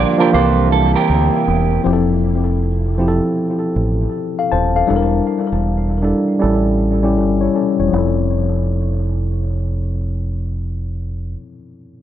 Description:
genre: R&B, neo-soul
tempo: 79 BPM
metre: 4/4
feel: swing 63% on 16ths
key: F major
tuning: A4 = 440 Hz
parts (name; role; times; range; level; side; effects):
- electric guitar through a small old amp; second line; 0.0-1.8 s; G4 to D5; -19 LUFS; right 8 dB; wide subtle chorus
- tine electric piano; accompaniment; 0.0-12.0 s; E3 to A5; -17 LUFS; moving between left 7 dB and right 2 dB; auto-pan, low-pass filter, tape echo
- soft string machine; sustained chords; 0.0-1.8 s; C3 to F4; -26 LUFS; right 2 dB; ensemble chorus
- deep dub fingered electric bass; bass; 0.0-11.3 s; Eb1 to D2; -18 LUFS; right 1 dB; none
room: light reverb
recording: echo-heavy mix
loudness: -15 LUFS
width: side -11 dB against mid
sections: 0.0-1.8 A section; 1.8-7.9 B section; 7.9-11.0 C section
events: filter sweep on tine electric piano 1.8-7.9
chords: 0.3 C7; 1.8 Fmaj7; 4.9 Em7b5; 6.4 A7; 7.9 Fmaj7

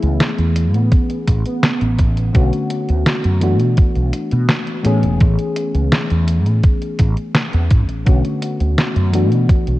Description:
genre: vaporwave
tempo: 84 BPM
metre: 4/4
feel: straight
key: A major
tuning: A4 = 440 Hz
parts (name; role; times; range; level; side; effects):
- warm velvety synth lead; melody; 0.0-2.0 s; B3 to E4; -26 LUFS; right 2 dB; chorus, tape echo
- mellow FM electric piano; accompaniment; 0.0-9.8 s; D3 to G#4; -21 LUFS; left 2 dB; wide subtle chorus, cassette tape, tape echo
- mellow fretless electric bass; bass; 0.0-9.8 s; E1 to B2; -16 LUFS; equal; tube saturation, analog chorus
- detuned 8-bit digital drum machine; drums; 0.0-9.8 s; hi-hat, snare drum; -19 LUFS; equal; none
- electronic kick drum; drums; 0.9-9.6 s; none; -14 LUFS; equal; none
room: light reverb, digital ambience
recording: cassette tape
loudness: -14 LUFS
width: side -17 dB against mid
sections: 0.0-9.8 A section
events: none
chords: 0.0 Amaj9; 2.3 Bm7; 3.4 E7sus4/B; 4.8 Amaj9; 8.1 Bm7; 9.1 E7sus4

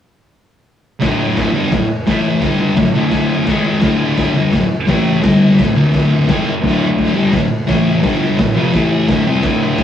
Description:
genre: garage rock duo or trio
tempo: 171 BPM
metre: 4/4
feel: straight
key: unclear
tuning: A4 = 441 Hz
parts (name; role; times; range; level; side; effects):
- thick fuzz guitar; riff; 1.0-9.8 s; D2 to C4; -13 LUFS; left 1 dB; distortion
- raw garage drum kit; drums; 1.0-9.8 s; hi-hat, kick drum, snare drum; -18 LUFS; left 1 dB; none
room: wet studio reverb, RT60 0.6 s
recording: rough rehearsal-room recording, warm saturation, cassette tape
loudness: -12 LUFS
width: side -10 dB against mid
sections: 1.0-9.8 A section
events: none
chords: 1.0 D5; 2.1 A5; 2.4 G5; 2.8 D5; 3.5 G#5; 3.8 D5; 4.9 A5; 5.2 G5; 5.6 D5; 6.3 G#5; 6.6 D5; 7.7 A5; 8.0 G5; 8.4 D5; 8.7 A5; 9.1 D5

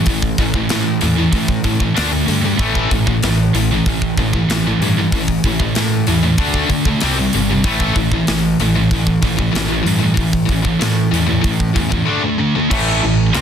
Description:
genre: heavy metal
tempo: 95 BPM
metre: 4/4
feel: straight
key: A minor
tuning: A4 = 440 Hz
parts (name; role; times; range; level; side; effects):
- high-gain distorted guitar; riff; 0.0-13.4 s; A2 to D4; -19 LUFS; left 10 dB; distortion
- scooped high-gain guitar; riff; 0.0-13.4 s; A2 to D4; -18 LUFS; right 8 dB; distortion
- fuzz picked electric bass; bass; 0.1-13.4 s; G1 to D3; -21 LUFS; equal; overdrive
- tight metal drum kit; drums; 0.1-13.4 s; crash cymbal, hi-hat, kick drum, snare drum; -20 LUFS; equal; none
- overdriven electric guitar; riff; 12.7-13.4 s; A2 to C4; -22 LUFS; right 2 dB; none
room: light reverb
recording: dense, heavily limited modern master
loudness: -14 LUFS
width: side -8 dB against mid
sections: 0.0-12.7 A section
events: none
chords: 0.0 A5; 2.0 D5; 2.6 A5; 6.4 D5; 7.0 C5; 7.7 A5; 12.1 D5; 12.7 Am

